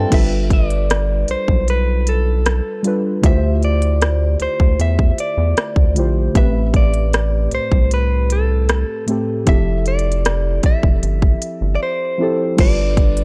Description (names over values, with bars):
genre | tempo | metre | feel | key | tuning
contemporary R&B | 77 BPM | 4/4 | straight | unclear | A4 = 440 Hz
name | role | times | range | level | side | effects
muted felt-like synth keys | accompaniment | 0.0-13.2 s | A2 to A5 | -25 LUFS | equal | chorus
rubbery square bass | bass | 0.0-13.2 s | F1 to E2 | -20 LUFS | equal | none
direct-recorded clean electric guitar | melody | 0.1-13.2 s | A4 to E5 | -25 LUFS | equal | spring reverb, tape echo
trap drum kit | drums | 0.1-13.2 s | crash cymbal, hi-hat, kick drum, rim click | -18 LUFS | equal | none
glassy wavetable pluck | texture | 6.4-13.2 s | G4 to B5 | -41 LUFS | equal | none
room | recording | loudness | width
little or no reverb | dry, gritty hardware recording, transformer saturation | -17 LUFS | mono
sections
0.1-12.6 A section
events
silent gap 11.8-12.6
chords
0.1 G9; 3.2 Dm11; 6.4 Am9; 9.5 Fmaj9; 12.6 G9